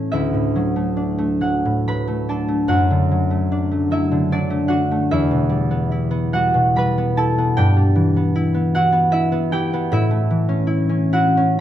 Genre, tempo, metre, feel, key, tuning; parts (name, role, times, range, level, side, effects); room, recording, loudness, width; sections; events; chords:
classical, solo harp piece; 63-78 BPM; 3/4; rubato; D major; A4 = 436 Hz
concert harp; solo; 0.0-11.6 s; D2 to B5; -16 LUFS; equal
moderate recital hall reverb, RT60 1.5 s; close, detailed microphones; -16 LUFS; side -11 dB against mid
0.2-11.6 A section
0.2 D; 2.7 D/F#; 5.1 Em; 7.6 Em/G; 9.9 A